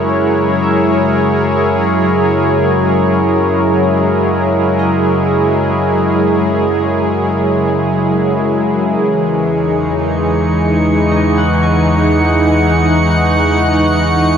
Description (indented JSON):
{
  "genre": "ambient",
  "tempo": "free time",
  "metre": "none",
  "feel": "none",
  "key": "unclear",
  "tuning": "A4 = 440 Hz",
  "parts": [
    { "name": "warm analog pad", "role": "sustained chords", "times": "0.0-14.4 s", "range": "E3 to F#5", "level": "-12 LUFS", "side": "equal", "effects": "chorus, tremolo" },
    { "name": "Celtic harp", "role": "arpeggios", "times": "0.0-13.1 s", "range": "D#5 to G#5", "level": "-28 LUFS", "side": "left 1 dB", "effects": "none" },
    { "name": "warm sub bass", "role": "bass", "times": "0.0-14.4 s", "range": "E2 to F#2", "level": "-21 LUFS", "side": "equal", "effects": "none" },
    { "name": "bowed-like drone", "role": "drone", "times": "0.0-14.4 s", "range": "C#3 to G#3", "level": "-19 LUFS", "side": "left 3 dB", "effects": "built-in reverb" },
    { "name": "drifting glass-harmonics texture", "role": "texture", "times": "9.9-14.4 s", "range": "C#6", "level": "-20 LUFS", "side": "right 3 dB", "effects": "chorus, built-in reverb" }
  ],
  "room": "wet huge ambient reverb, RT60 7.9 s",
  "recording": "dreamy mix soaked in reverb, nothing above 10.6 kHz",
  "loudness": "-11 LUFS",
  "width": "side -7 dB against mid",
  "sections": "0.0-14.4 A section",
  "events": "fade-in on sub bass 0.0-14.4",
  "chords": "0.0 F#13; 9.0 Emaj9",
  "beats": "free time"
}